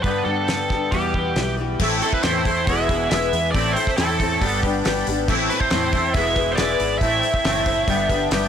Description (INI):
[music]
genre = folk rock and heartland rock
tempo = 138 BPM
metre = 4/4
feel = straight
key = A minor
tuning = A4 = 440 Hz
[part]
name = biting lead guitar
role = melody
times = 0.0-8.3 s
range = G4 to E5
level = -23 LUFS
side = right 1 dB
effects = overdrive, digital delay
[part]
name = picked twelve-string acoustic guitar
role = accompaniment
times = 0.0-8.5 s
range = A2 to C5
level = -25 LUFS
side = left 8 dB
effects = none
[part]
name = twangy electric guitar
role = riff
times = 0.0-8.5 s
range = E2 to G4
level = -24 LUFS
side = right 4 dB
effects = analog chorus
[part]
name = fingered electric bass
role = bass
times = 0.0-8.5 s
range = E1 to G2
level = -28 LUFS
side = right 1 dB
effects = none
[part]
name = damped 70s drum kit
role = drums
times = 0.0-8.4 s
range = crash cymbal, hi-hat, kick drum, snare drum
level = -24 LUFS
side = equal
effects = soft clipping on snare
[part]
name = rich chamber string section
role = sustained chords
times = 1.8-8.5 s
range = B4 to E6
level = -35 LUFS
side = left 5 dB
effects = none
[sound]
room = light reverb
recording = blown-out, overdriven recording, overdrive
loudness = -18 LUFS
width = side -8 dB against mid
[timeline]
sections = 0.0-1.8 A section; 1.8-8.5 B section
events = none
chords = 0.0 G; 0.9 Em; 1.8 Am; 2.7 E; 3.5 Am; 4.4 G; 5.3 Am; 6.2 E; 7.0 Am; 7.9 G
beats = | 0.04 0.48 0.92 1.36 | 1.80 2.23 2.67 3.11 | 3.54 3.98 4.41 4.85 | 5.28 5.72 6.15 6.58 | 7.02 7.45 7.89 8.32